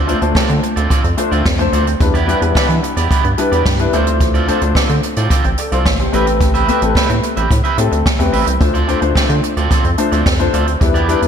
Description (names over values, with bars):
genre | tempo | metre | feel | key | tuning
early-eighties boogie funk | 109 BPM | 4/4 | straight | D dorian | A4 = 440 Hz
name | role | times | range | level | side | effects
electric guitar at the edge of break-up | riff | 0.0-11.3 s | B3 to E5 | -20 LUFS | right 4 dB | wide subtle chorus
rubbery square bass | bass | 0.0-11.3 s | A1 to E3 | -17 LUFS | equal | none
warm grand piano | accompaniment | 0.1-11.3 s | G3 to F5 | -18 LUFS | left 4 dB | lush chorus
jazz brush drum kit | drums | 0.1-11.3 s | hi-hat, kick drum, snare drum | -16 LUFS | equal | none
room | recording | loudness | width
moderate lush hall reverb, RT60 2.1 s | dreamy mix soaked in reverb | -12 LUFS | side -8 dB against mid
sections
0.0-11.3 A section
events
none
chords
0.0 Dm7; 2.0 Em7; 3.9 Dm7; 6.1 Am9; 8.6 Dm7